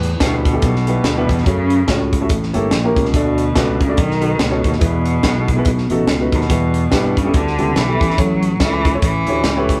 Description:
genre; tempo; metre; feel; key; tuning
uptempo gospel; 143 BPM; 4/4; swing 60% on 8ths; A mixolydian; A4 = 442 Hz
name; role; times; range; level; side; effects
rich cello; melody; 0.0-9.7 s; A2 to F#3; -23 LUFS; equal; none
warm grand piano; accompaniment; 0.0-9.8 s; A2 to E5; -23 LUFS; equal; none
modern bright fingered electric bass; bass; 0.0-9.8 s; G1 to G2; -22 LUFS; equal; none
tight funk drum kit; drums; 0.0-9.8 s; hi-hat, kick drum, snare drum; -21 LUFS; equal; none
room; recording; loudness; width
moderate studio reverb, RT60 0.6 s; band playing live in one room; -16 LUFS; mono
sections
0.0-9.8 A section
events
none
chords
0.0 Em; 1.5 F#m; 2.3 A7b9; 3.1 D; 4.0 B7; 4.8 E; 5.7 B7; 6.5 Em; 8.2 A; 9.0 A7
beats
0.20 0.62 1.04 | 1.46 1.88 2.30 2.72 | 3.14 3.56 3.98 4.39 | 4.82 5.24 5.66 6.08 | 6.50 6.92 7.34 7.76 | 8.18 8.60 9.02 9.44

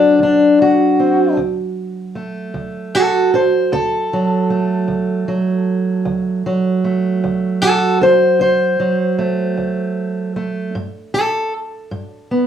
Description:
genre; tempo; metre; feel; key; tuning
acoustic country blues, solo or duo; 51 BPM (dotted quarters); 12/8; straight; D mixolydian; A4 = 440 Hz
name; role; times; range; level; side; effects
fingerpicked steel-string acoustic guitar; solo; 0.0-12.5 s; D2 to C5; -14 LUFS; equal; none
room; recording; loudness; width
wet studio reverb, RT60 0.5 s; heard from further back in the room, studio ambience; -14 LUFS; side -9 dB against mid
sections
0.0-12.5 A section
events
steel-string acoustic guitar solo 0.0-12.5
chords
0.0 D7; 10.7 N.C.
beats
0.20 | 1.37 2.54 3.72 4.89 | 6.06 7.23 8.40 9.57 | 10.74 11.91

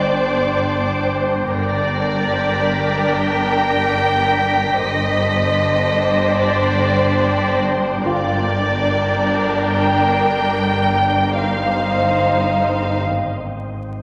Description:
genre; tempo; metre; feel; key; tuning
cinematic; 73 BPM; 4/4; straight; G minor; A4 = 439 Hz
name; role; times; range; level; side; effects
rich studio violin section; melody; 0.0-13.0 s; D5 to G5; -22 LUFS; equal; none
rich studio violin section; second line; 0.0-13.0 s; D4 to C5; -24 LUFS; equal; none
wind-like tuned noise texture; sustained chords; 0.0-13.1 s; Bb4 to D6; -27 LUFS; equal; built-in reverb
rich studio cello section; bass; 0.0-13.0 s; G2; -26 LUFS; equal; none
rich studio double bass section; bass; 0.0-13.0 s; G1; -28 LUFS; equal; none
saturated sub bass; drone; 0.0-14.0 s; G1 to Ab1; -34 LUFS; equal; none
rich studio violin section; texture; 0.0-7.6 s; D6 to B6; -30 LUFS; equal; none
concert harp; texture; 2.3-11.4 s; F4 to F5; -30 LUFS; equal; none
room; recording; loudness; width
wet scoring stage reverb, RT60 1.7 s; vinyl crackle; -18 LUFS; mono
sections
0.0-14.0 A section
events
break 13.0-14.0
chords
0.0 Csus2/G; 1.5 Gm; 11.4 Cm/G; 13.0 N.C.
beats
0.70 | 1.51 2.32 3.15 3.97 | 4.78 5.59 6.41 7.22 | 8.04 8.85 9.70 10.53 | 11.36 12.19 13.05 13.90

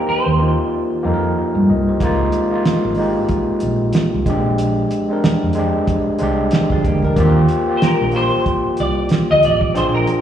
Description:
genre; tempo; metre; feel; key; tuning
R&B, neo-soul; 93 BPM; 4/4; swing 57% on 16ths; Eb major; A4 = 442 Hz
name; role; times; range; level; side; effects
semi-hollow electric guitar; melody; 0.0-1.0, 7.8-10.2 s; Bb4 to Eb5; -18 LUFS; equal; ensemble chorus, slapback echo, plate reverb
overdriven tine electric piano; accompaniment; 0.0-10.2 s; Ab3 to Eb5; -18 LUFS; left 1 dB; plate reverb
woody fretless electric bass; bass; 0.1-10.0 s; Ab1 to G2; -18 LUFS; right 1 dB; lush chorus
cloth-damped thuddy drum kit; drums; 2.0-10.2 s; hi-hat, kick drum, snare drum; -19 LUFS; right 1 dB; none
flamenco guitar; second line; 6.7-7.3 s; Ab3 to Bb4; -26 LUFS; right 3 dB; plate reverb, slapback echo
room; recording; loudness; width
moderate club reverb, RT60 0.6 s; live gig heard through the venue's PA, recital hall reverb; -14 LUFS; side -9 dB against mid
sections
0.0-10.2 A section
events
none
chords
0.0 Abmaj9 (rootless); 2.0 Db6; 4.3 Bb13; 7.2 Eb6 (rootless)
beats
0.07 0.71 1.36 | 2.00 2.65 3.29 3.94 | 4.59 5.23 5.88 6.52 | 7.17 7.81 8.46 9.10 | 9.75

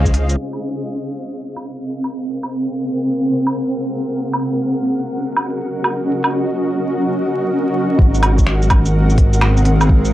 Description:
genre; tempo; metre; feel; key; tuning
future garage; 126 BPM; 4/4; swing 66% on 16ths; unclear; A4 = 441 Hz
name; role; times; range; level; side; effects
granular cloud pad; sustained chords; 0.0-10.1 s; C4 to Gb5; -18 LUFS; equal; built-in reverb, sidechain pumping
dark detuned saw bass; bass; 0.0-0.4, 8.0-10.1 s; Ab1 to Db2; -14 LUFS; equal; tube saturation, sidechain pumping
electronic kick drum; drums; 0.1, 8.0-10.0 s; none; -13 LUFS; equal; vintage 12-bit sampler grit
organic electronic drum kit; drums; 0.1-10.1 s; finger snaps, hi-hat, shaker, woodblock; -20 LUFS; right 1 dB; vintage 12-bit sampler grit
room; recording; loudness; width
light reverb, digital ambience; dry, gritty hardware recording, vinyl crackle, low-pass filter; -15 LUFS; side -14 dB against mid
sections
0.4-8.0 A section; 8.0-10.1 B section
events
filter sweep on ambient pad 0.4-8.0; filter sweep 0.4-8.0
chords
0.4 Ab13; 4.2 Ebm7; 8.0 Ab13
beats
| 0.37 0.85 1.32 1.80 | 2.27 2.75 3.23 3.70 | 4.18 4.66 5.13 5.61 | 6.08 6.56 7.04 7.51 | 7.99 8.46 8.94 9.42 | 9.89

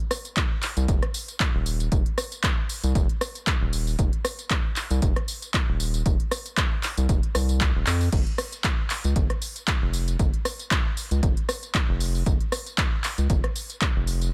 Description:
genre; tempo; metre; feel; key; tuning
deep house; 116 BPM; 4/4; swing 55% on 16ths; unclear; A4 = 440 Hz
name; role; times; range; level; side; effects
deep house drum kit; drums; 0.1-14.3 s; crash cymbal, handclaps, hi-hat, rim click, tambourine; -31 LUFS; equal; none
electronic kick drum; drums; 0.4-13.9 s; none; -27 LUFS; equal; none
round analog bass; bass; 0.8-14.3 s; Eb1 to F2; -27 LUFS; equal; sidechain pumping
room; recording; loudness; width
little or no reverb; none; -25 LUFS; mono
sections
0.0-14.3 A section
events
drum fill 7.9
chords
none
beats
0.37 0.89 1.40 | 1.92 2.44 2.95 3.47 | 3.99 4.50 5.02 5.54 | 6.06 6.57 7.09 7.61 | 8.13 8.64 9.16 9.68 | 10.20 10.71 11.23 11.75 | 12.26 12.78 13.30 13.82

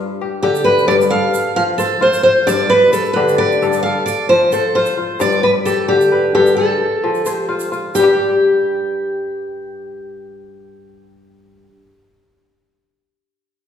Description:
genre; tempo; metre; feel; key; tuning
west african traditional, West African string and xylophone music; 88 BPM (dotted quarters); 12/8; straight; unclear; A4 = 440 Hz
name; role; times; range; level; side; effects
kora; arpeggios; 0.0-11.7 s; G2 to C5; -17 LUFS; left 4 dB; none
picked steel-string acoustic guitar; melody; 0.4-11.6 s; G4 to F5; -15 LUFS; right 1 dB; none
egg shaker; percussion; 0.6-8.2 s; none; -35 LUFS; right 5 dB; none
room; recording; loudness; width
wet recital hall reverb, RT60 1.7 s; recorded in a church or concert hall, small room ambience; -13 LUFS; side -8 dB against mid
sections
0.0-7.9 A section; 7.9-10.7 B section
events
none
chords
0.0 G; 1.1 F; 2.5 G; 3.8 F; 5.2 G; 6.6 F; 7.9 Fsus2/G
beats
0.43 1.12 1.80 | 2.48 3.17 3.85 4.53 | 5.21 5.90 6.58 7.26 | 7.94 8.63 9.31 9.99

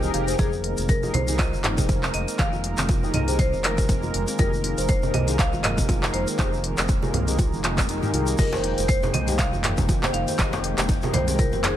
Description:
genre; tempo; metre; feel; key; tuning
afro house; 120 BPM; 4/4; swing 56% on 16ths; F minor; A4 = 439 Hz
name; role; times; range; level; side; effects
warm analog pad; sustained chords; 0.0-11.8 s; Eb3 to G5; -31 LUFS; right 1 dB; chorus, tremolo, sidechain pumping
kalimba; arpeggios; 0.0-11.8 s; C4 to F5; -32 LUFS; equal; sidechain pumping, ping-pong delay
mellow synth brass; stabs; 0.0-11.4 s; Eb4 to Bb4; -33 LUFS; left 3 dB; chorus, sidechain pumping, ping-pong delay
dark detuned saw bass; bass; 0.0-11.8 s; F1 to C2; -28 LUFS; equal; sidechain pumping
congas; percussion; 0.0-11.6 s; none; -31 LUFS; right 3 dB; none
tube shaker; percussion; 0.0-11.6 s; none; -36 LUFS; left 2 dB; none
afro-pop drum kit; drums; 0.1-11.8 s; crash cymbal, handclaps, hi-hat, toms; -28 LUFS; equal; none
marimba with hard mallets; melody; 0.4-11.8 s; Ab4 to F5; -30 LUFS; left 1 dB; ping-pong delay
electronic kick drum; drums; 0.4-11.5 s; none; -23 LUFS; equal; overdrive
djembe; percussion; 8.5-11.8 s; none; -33 LUFS; left 2 dB; none
room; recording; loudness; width
small room ambience; none; -20 LUFS; side -11 dB against mid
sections
0.0-11.8 A section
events
kick drops out 7.9-8.4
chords
0.0 Fm11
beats
| 0.39 0.89 1.39 1.89 | 2.39 2.89 3.39 3.89 | 4.39 4.89 5.39 5.89 | 6.39 6.89 7.39 7.89 | 8.39 8.89 9.39 9.89 | 10.39 10.89 11.39

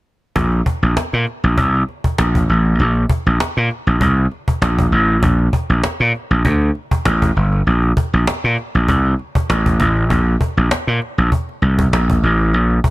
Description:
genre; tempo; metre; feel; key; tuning
polished 1980s jazz-funk pop; 98 BPM; 4/4; swing 54% on 16ths; Bb major; A4 = 441 Hz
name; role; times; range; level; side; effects
gritty slap bass; bass; 0.4-12.8 s; G1 to Bb2; -14 LUFS; equal; overdrive
cajon; drums; 0.4-12.9 s; none; -20 LUFS; equal; none
room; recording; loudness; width
studio ambience; none; -14 LUFS; side -19 dB against mid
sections
0.4-12.9 A section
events
none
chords
none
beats
| 0.36 0.97 1.58 2.19 | 2.79 3.40 4.01 4.62 | 5.23 5.84 6.45 7.06 | 7.67 8.28 8.88 9.49 | 10.10 10.71 11.32 11.93 | 12.54

